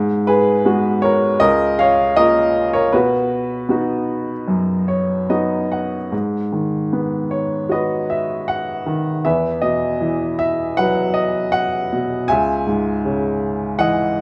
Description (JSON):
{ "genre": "classical, lyrical solo piano", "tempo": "78 BPM", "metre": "4/4", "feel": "rubato", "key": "B lydian, G# minor from 6.1 s", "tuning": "A4 = 439 Hz", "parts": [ { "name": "clear upright piano", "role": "solo", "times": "0.0-14.2 s", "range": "C#2 to G#5", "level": "-18 LUFS", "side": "equal", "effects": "none" } ], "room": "moderate scoring stage reverb, RT60 1.9 s", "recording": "none", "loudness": "-19 LUFS", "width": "mono", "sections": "0.0-6.1 A section; 6.1-14.2 B section", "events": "upright piano fill 4.5-6.1", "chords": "0.0 G#m7; 1.4 C#6; 2.9 B; 6.1 G#m7; 9.2 Esus2; 12.3 C#madd9" }